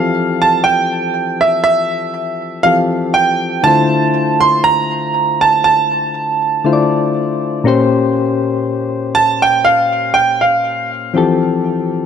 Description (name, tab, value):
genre	R&B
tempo	60 BPM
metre	4/4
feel	swing 54% on 16ths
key	F major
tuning	A4 = 438 Hz
part	clear grand piano	melody	0.0-11.1 s	E5 to C6	-13 LUFS	right 3 dB	digital delay
part	soft electric-piano-like synth keys	accompaniment	0.0-12.1 s	Bb2 to D5	-16 LUFS	left 4 dB	chorus
room	moderate lush hall reverb, RT60 2.5 s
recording	none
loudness	-12 LUFS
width	side -7 dB against mid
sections	0.0-12.1 A section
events	none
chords	0.0 Fmaj7; 3.7 Dm7; 7.7 Bbm6; 11.2 Fmaj9